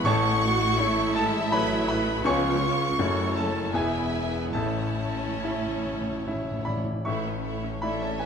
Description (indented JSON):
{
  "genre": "classical",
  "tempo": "68-83 BPM",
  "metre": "3/4",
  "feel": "rubato",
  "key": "A major",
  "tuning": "A4 = 440 Hz",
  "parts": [
    { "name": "clear grand piano", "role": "melody", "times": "0.0-8.3 s", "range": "E1 to C#6", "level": "-27 LUFS", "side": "left 2 dB", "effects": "none" },
    { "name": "warm symphonic violin section", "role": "melody", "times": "0.0-8.3 s", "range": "C#5 to F#5", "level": "-36 LUFS", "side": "left 1 dB", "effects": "none" },
    { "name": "concert flute", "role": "second line", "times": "0.0-6.6 s", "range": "G#5 to C#6", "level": "-33 LUFS", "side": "right 1 dB", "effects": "none" },
    { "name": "warm symphonic violin section", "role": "second line", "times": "0.0-8.3 s", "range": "A4 to C#6", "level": "-33 LUFS", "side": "equal", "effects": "none" },
    { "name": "warm symphonic viola section", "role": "accompaniment", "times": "0.0-8.3 s", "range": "E#3 to F#4", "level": "-33 LUFS", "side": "right 2 dB", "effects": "none" },
    { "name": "mellow French horn section", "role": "sustained chords", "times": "0.0-6.7 s", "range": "A3 to E#4", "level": "-34 LUFS", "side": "left 1 dB", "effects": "none" },
    { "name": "warm symphonic double bass section", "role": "bass", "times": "0.0-8.3 s", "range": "E1 to C#2", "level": "-36 LUFS", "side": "right 2 dB", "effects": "none" },
    { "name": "timpani", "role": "percussion", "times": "0.0-1.1, 4.5-7.0 s", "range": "A2", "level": "-36 LUFS", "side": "equal", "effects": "none" },
    { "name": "dark symphonic cello section", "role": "bass", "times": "0.1-8.3 s", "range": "E2 to C#3", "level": "-35 LUFS", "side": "right 4 dB", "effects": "none" }
  ],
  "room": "moderate recital hall reverb, RT60 1.6 s",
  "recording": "close, detailed microphones",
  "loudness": "-24 LUFS",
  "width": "side -6 dB against mid",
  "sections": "0.0-7.1 A section; 7.1-8.3 A section",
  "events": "timpani fill 4.5-7.1",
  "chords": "0.1 A; 2.3 C#7; 3.0 F#m7; 3.7 E; 4.5 A"
}